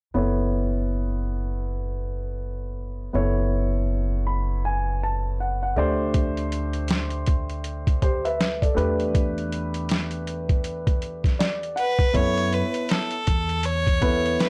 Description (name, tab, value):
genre	hip hop, jazz-hop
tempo	80 BPM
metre	4/4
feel	swing 60% on 16ths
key	F# phrygian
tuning	A4 = 440 Hz
part	dark grand piano	accompaniment	0.1-14.5 s	A3 to B5	-29 LUFS	equal	plate reverb
part	upright bass	bass	0.1-14.4 s	F#1 to F#2	-30 LUFS	equal	none
part	boom bap sampler-style drum kit	drums	6.1-14.5 s	hi-hat, kick drum, snare drum	-25 LUFS	equal	none
part	clear violin	melody	11.8-14.5 s	A4 to C#5	-28 LUFS	equal	plate reverb
room	light reverb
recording	none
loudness	-24 LUFS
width	mono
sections	0.1-12.1 A section; 12.1-14.5 B section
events	grand piano fill 3.9-6.1, 11.0-12.1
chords	0.1 F#m7; 5.8 D7sus4; 8.8 Em7; 12.1 F#m11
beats	| 0.14 0.90 1.65 2.40 | 3.15 3.90 4.64 5.39 | 6.14 6.89 7.64 8.39 | 9.14 9.89 10.64 11.39 | 12.14 12.89 13.64 14.39